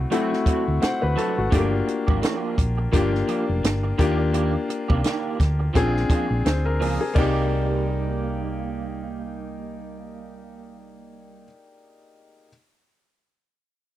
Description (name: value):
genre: lush 1970s-style soul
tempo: 85 BPM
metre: 4/4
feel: swing 58% on 16ths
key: C minor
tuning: A4 = 439 Hz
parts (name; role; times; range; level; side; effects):
- warm baby grand piano; accompaniment; 0.0-12.5 s; A3 to A5; -25 LUFS; left 3 dB; none
- hollow-body short-scale fingered electric bass; bass; 0.0-11.4 s; F1 to Eb2; -25 LUFS; equal; none
- electric guitar through a small old amp; riff; 0.1-11.5 s; Eb3 to Ab4; -30 LUFS; right 7 dB; ensemble chorus
- compact cocktail drum kit; drums; 0.1-7.3 s; crash cymbal, hi-hat, kick drum, snare drum; -23 LUFS; equal; none
room: little or no reverb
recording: dry, close 1970s-style studio recording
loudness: -20 LUFS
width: side -13 dB against mid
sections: 0.0-7.2 A section; 7.2-10.0 B section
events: grand piano fill 0.5-1.5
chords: 0.0 D7; 1.5 Gm7; 4.0 Ebmaj7; 5.8 Bb7; 7.2 Cm7